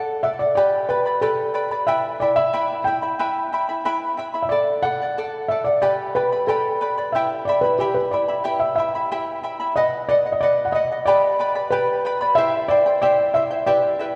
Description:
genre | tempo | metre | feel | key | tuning
andean folk, Andean ensemble | 91 BPM | 2/4 | straight | E minor | A4 = 440 Hz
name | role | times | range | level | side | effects
felt-muted upright piano | melody | 0.0-14.2 s | G4 to G5 | -22 LUFS | equal | none
charango | accompaniment | 0.0-14.2 s | E4 to B5 | -26 LUFS | equal | none
room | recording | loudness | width
wet church reverb, RT60 2.9 s | recorded in a church or concert hall | -21 LUFS | mono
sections
0.0-9.8 A section; 9.8-14.2 B section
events
none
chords
0.0 D; 0.6 G; 1.9 Em; 4.5 D; 5.8 G; 7.1 Em; 9.8 B; 11.1 G; 12.4 C

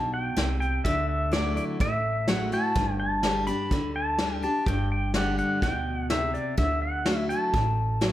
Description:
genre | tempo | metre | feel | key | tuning
honky-tonk and classic country | 126 BPM | 4/4 | straight | G major | A4 = 440 Hz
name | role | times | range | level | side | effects
pedal steel guitar | melody | 0.0-8.1 s | D5 to B5 | -28 LUFS | equal | none
picked steel-string acoustic guitar | accompaniment | 0.0-8.1 s | G2 to G4 | -30 LUFS | left 1 dB | none
upright bass | bass | 0.0-8.1 s | G1 to D2 | -30 LUFS | right 1 dB | none
soft brush drum kit | drums | 0.4-8.1 s | hi-hat, kick drum, snare drum | -29 LUFS | equal | none
room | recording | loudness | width
light reverb | none | -24 LUFS | side -13 dB against mid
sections
0.0-8.1 A section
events
none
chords
0.0 N.C.; 0.8 Dadd9; 2.8 Gsus2; 6.6 Dadd9

